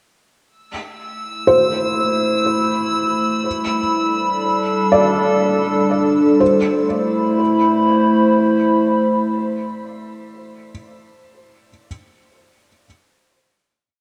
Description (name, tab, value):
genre	ambient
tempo	free time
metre	none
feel	none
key	A minor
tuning	A4 = 438 Hz
part	warbly tape-like pad	sustained chords	1.7-10.1 s	G3 to B5	-19 LUFS	equal	chorus, built-in reverb, shimmer reverb
part	drifting glass-harmonics texture	texture	1.0-6.4 s	E6	-27 LUFS	equal	chorus, built-in reverb, shimmer reverb
part	felt-muted upright piano	arpeggios	1.5-11.9 s	C5 to D5	-22 LUFS	equal	delay, shimmer reverb
room	wet plate reverb, RT60 3.0 s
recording	dreamy mix soaked in reverb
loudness	-17 LUFS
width	mono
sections	0.5-6.4 A section; 6.4-9.4 final chord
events	fade-in on ambient pad 0.5-6.4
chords	0.5 Am; 3.5 G; 6.4 Am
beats	free time